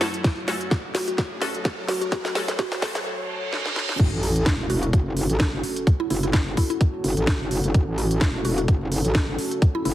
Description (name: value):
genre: bass house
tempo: 128 BPM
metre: 4/4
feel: swing 55% on 16ths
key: F# minor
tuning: A4 = 440 Hz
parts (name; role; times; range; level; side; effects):
- dark analog pad; sustained chords; 0.0-9.9 s; F#3 to C#5; -32 LUFS; right 1 dB; chorus, sidechain pumping
- band-passed chord stab; stabs; 0.0-2.9 s; A3 to A4; -31 LUFS; left 1 dB; phaser, analog chorus, sidechain pumping, digital delay
- garage drum kit; drums; 0.0-9.9 s; crash cymbal, hi-hat, snare drum; -28 LUFS; equal; none
- riser, reverse cymbal and sub drop; sound effects; 0.0-5.9 s; none; -33 LUFS; right 2 dB; none
- electronic kick drum; drums; 0.2-9.7 s; none; -20 LUFS; equal; none
- mallet-like synth pluck; melody; 0.9-9.9 s; E4 to F#4; -29 LUFS; left 1 dB; chorus, phaser, digital delay
- metallic wobble bass; bass; 4.0-9.9 s; E1 to A1; -24 LUFS; equal; chorus, tube saturation, sidechain pumping
room: light reverb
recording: heavily compressed radio sound, multiband compression, high-pass filter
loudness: -21 LUFS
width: side -13 dB against mid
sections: 0.0-4.0 A section; 4.0-9.9 B section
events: build-up 0.0-4.0; drum fill 0.0-3.1, 3.5-4.0; filter sweep on analog synth pad 0.0-4.0; filter sweep 0.0-4.0; reverse cymbal 3.1-4.0; drop 4.0-9.9; impact 4.0-5.9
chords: 0.0 F#m